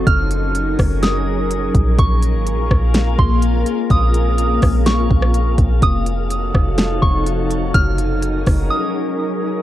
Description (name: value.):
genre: hip hop, atmospheric cloud-rap.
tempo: 125 BPM.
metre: 4/4.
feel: half-time.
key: Bb minor.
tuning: A4 = 440 Hz.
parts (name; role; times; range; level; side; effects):
soft synth bell; melody; 0.0-9.6 s; C6 to F6; -24 LUFS; right 1 dB; chorus, phaser, tape echo.
glassy FM pad; sustained chords; 0.0-9.6 s; C3 to F5; -21 LUFS; left 1 dB; ensemble chorus, built-in reverb, sidechain pumping.
soft 808-style bass; bass; 0.0-8.7 s; F1 to Bb1; -18 LUFS; equal; none.
smooth R&B drum kit; drums; 0.1-8.6 s; hi-hat, kick drum, rim click, snare drum; -16 LUFS; equal; overdrive.
wind-like tuned noise texture; texture; 3.1-9.6 s; Ab3 to Db5; -30 LUFS; right 2 dB; built-in reverb.
room: little or no reverb.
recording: worn, warbling old tape, cassette tape, warbly pitch drift.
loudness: -14 LUFS.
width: side -13 dB against mid.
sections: 0.0-9.6 A section.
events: break 8.7-9.6.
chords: 0.1 Gb69; 2.0 Bbm9; 5.8 F7b9b13; 7.7 Gb69.